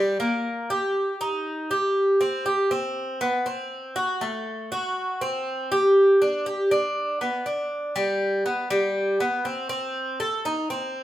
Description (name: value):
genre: latin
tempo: 120 BPM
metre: 4/4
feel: straight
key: unclear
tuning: A4 = 441 Hz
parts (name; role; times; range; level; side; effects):
- Cuban tres; solo; 0.0-11.0 s; G3 to A4; -22 LUFS; equal; none
room: wet stone room reverb, RT60 1.0 s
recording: band playing live in one room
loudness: -22 LUFS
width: side -13 dB against mid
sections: 0.0-8.0 A section; 8.0-11.0 B section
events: none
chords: none